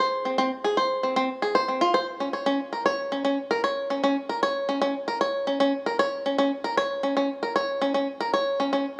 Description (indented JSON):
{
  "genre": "folktronica",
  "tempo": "115 BPM",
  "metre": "4/4",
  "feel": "straight",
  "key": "unclear",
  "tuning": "A4 = 441 Hz",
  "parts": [
    { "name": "bluegrass banjo", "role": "solo", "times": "0.0-8.9 s", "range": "C4 to Db5", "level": "-26 LUFS", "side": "equal", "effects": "none" }
  ],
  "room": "moderate plate reverb, RT60 2.4 s",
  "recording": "small room ambience",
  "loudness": "-26 LUFS",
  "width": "mono",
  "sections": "0.0-9.0 A section",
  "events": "none",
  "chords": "none"
}